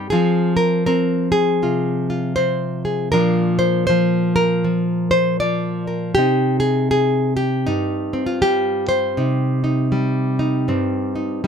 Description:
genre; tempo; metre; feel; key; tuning
folk, solo fingerstyle acoustic guitar; 79 BPM; 4/4; swing 61% on 8ths; C minor; A4 = 440 Hz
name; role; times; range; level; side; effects
nylon-string guitar; solo; 0.0-11.5 s; G2 to D5; -16 LUFS; equal; none
room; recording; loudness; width
light reverb; close, detailed microphones; -16 LUFS; side -7 dB against mid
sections
0.0-11.5 A section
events
none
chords
0.1 Fm; 3.1 Bb; 6.1 Cm

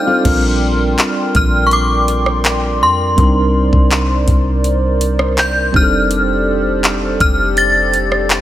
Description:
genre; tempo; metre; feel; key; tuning
contemporary R&B; 82 BPM; 4/4; straight; Bb major; A4 = 440 Hz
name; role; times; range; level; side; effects
synth chime; melody; 0.0-8.4 s; C6 to A6; -17 LUFS; left 1 dB; ensemble chorus, digital delay
tine electric piano; accompaniment; 0.0-8.4 s; G3 to G5; -19 LUFS; right 1 dB; medium stereo tremolo
hollow soft pad; sustained chords; 0.0-8.4 s; G4 to D6; -21 LUFS; right 1 dB; chorus
soft 808-style bass; bass; 0.3-8.4 s; F1 to F2; -18 LUFS; equal; none
smooth R&B drum kit; drums; 0.3-8.4 s; crash cymbal, handclaps, hi-hat, kick drum, rim click; -16 LUFS; equal; none
room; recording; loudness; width
light reverb, digital ambience; none; -11 LUFS; side -13 dB against mid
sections
0.3-8.4 A section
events
break 0.0; tine electric piano fill 0.0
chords
0.3 Bb69; 3.2 Cm9; 5.7 F13

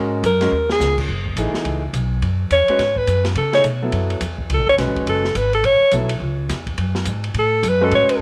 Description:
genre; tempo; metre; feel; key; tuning
modal jazz; 211 BPM; 4/4; swing 62% on 8ths; F# dorian; A4 = 440 Hz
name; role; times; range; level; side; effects
warm concert grand piano; accompaniment; 0.0-8.2 s; E3 to C#5; -25 LUFS; equal; none
upright bass; bass; 0.0-8.1 s; F#1 to C#3; -24 LUFS; equal; none
open jazz drum kit; drums; 0.2-8.1 s; crash cymbal, hi-hat, kick drum, ride cymbal, snare drum; -31 LUFS; equal; none
warm alto saxophone; melody; 0.3-8.2 s; Ab4 to C#5; -19 LUFS; equal; none
room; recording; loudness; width
light reverb; none; -19 LUFS; mono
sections
0.0-1.1 A section; 1.1-8.2 A section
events
alto saxophone solo 0.0-8.2; drum fill 0.5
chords
0.0 Dbsus4; 1.1 F#m11

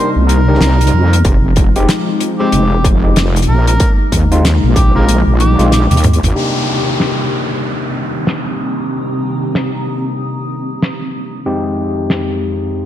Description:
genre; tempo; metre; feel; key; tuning
glitch hop; 94 BPM; 4/4; swing 60% on 16ths; C minor; A4 = 440 Hz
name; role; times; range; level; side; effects
overdriven harmonica; melody; 0.0-6.0 s; C4 to Bb4; -21 LUFS; right 1 dB; ping-pong delay
warm analog pad; sustained chords; 0.0-12.9 s; F2 to Eb4; -20 LUFS; left 1 dB; chorus, vintage 12-bit sampler grit, sidechain pumping
overdriven tine electric piano; stabs; 0.0-12.9 s; F2 to Bb4; -20 LUFS; left 1 dB; sidechain pumping, low-pass filter, ping-pong delay
wobble bass; bass; 0.2-6.3 s; F1 to F2; -12 LUFS; equal; chorus
damped 70s drum kit; drums; 0.3-12.3 s; hi-hat, rim click, snare drum, toms; -18 LUFS; equal; low-pass filter on hats, low-pass filter on toms, low-pass filter on snare, low-pass filter on room
electronic kick drum; drums; 1.2-4.9 s; none; -12 LUFS; equal; distortion
downlifter; sound effects; 6.4-11.5 s; none; -22 LUFS; equal; none
granular cloud pad; texture; 7.9-12.9 s; Eb3 to Eb6; -24 LUFS; right 1 dB; built-in reverb, sidechain pumping
room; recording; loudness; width
light reverb, studio reverb; none; -11 LUFS; side -12 dB against mid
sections
0.0-6.4 A section; 6.4-12.9 B section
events
drum fill 5.7-6.4; filter sweep on analog synth pad 6.4-12.9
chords
0.0 Cm7; 1.3 Fm7; 3.8 Bb7sus4; 6.4 Cm7; 11.5 Fm7

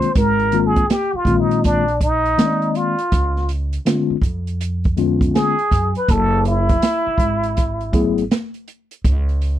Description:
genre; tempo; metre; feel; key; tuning
hip hop, jazz-hop; 81 BPM; 4/4; swing 64% on 16ths; unclear; A4 = 444 Hz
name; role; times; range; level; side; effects
trumpet with plunger mute; melody; 0.0-8.3 s; D4 to C5; -19 LUFS; equal; none
mellow tine electric piano; accompaniment; 0.0-8.2 s; D3 to D5; -18 LUFS; left 4 dB; slow stereo tremolo
open jazz drum kit; drums; 0.0-9.6 s; hi-hat, kick drum, snare drum; -19 LUFS; right 1 dB; none
upright bass; bass; 0.2-9.6 s; F#1 to F#2; -20 LUFS; equal; none
room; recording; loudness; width
little or no reverb; dry, close 1970s-style studio recording; -16 LUFS; side -12 dB against mid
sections
0.0-9.6 A section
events
muted trumpet solo 0.0-9.6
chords
0.2 G#69; 3.1 C#7b9; 6.1 F#7sus2; 9.0 N.C.

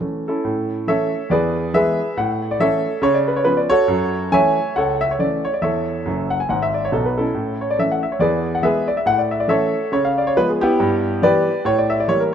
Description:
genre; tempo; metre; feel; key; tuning
jazz, stride piano; 139 BPM; 4/4; swing 58% on 8ths; A major; A4 = 441 Hz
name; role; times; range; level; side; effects
warm concert grand piano; solo; 0.0-12.3 s; F#1 to G#5; -16 LUFS; equal; none
room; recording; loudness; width
light reverb, studio reverb; rough home demo mix; -16 LUFS; side -8 dB against mid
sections
0.5-12.3 A section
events
grand piano fill 6.1-7.4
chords
0.5 A; 1.3 E7; 2.2 A; 3.0 C#7; 3.9 F#m7; 5.6 A/E; 6.5 E; 7.4 A; 8.2 E; 9.1 A; 9.9 C#7; 10.8 Em/G; 11.7 A5

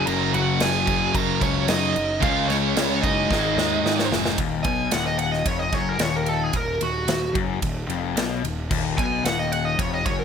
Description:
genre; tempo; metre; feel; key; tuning
hard rock; 111 BPM; 4/4; straight; Eb minor; A4 = 440 Hz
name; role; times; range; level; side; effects
smooth overdriven lead guitar; melody; 0.0-10.2 s; Gb4 to Bb5; -25 LUFS; right 2 dB; slapback echo
fuzz lead guitar; second line; 0.0-4.1 s; Db4 to Bb4; -31 LUFS; right 2 dB; distortion
crunchy overdriven guitar; riff; 0.0-10.2 s; Eb2 to Db4; -26 LUFS; left 10 dB; none
high-gain distorted guitar; riff; 0.0-4.4 s; Gb2 to Db4; -26 LUFS; right 16 dB; distortion
fuzz picked electric bass; bass; 0.0-10.2 s; Eb1 to Ab2; -29 LUFS; right 1 dB; overdrive
big rock drum kit; drums; 0.1-10.2 s; crash cymbal, kick drum, ride cymbal, snare drum; -26 LUFS; right 1 dB; none
room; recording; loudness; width
light reverb, small room reverb; none; -20 LUFS; side -7 dB against mid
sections
0.0-4.4 A section; 4.4-10.2 B section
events
drum fill 3.3-4.4; lead electric guitar solo 4.4-10.2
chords
0.0 Gb5; 2.2 Db5; 3.3 Ab5; 4.4 Ebm

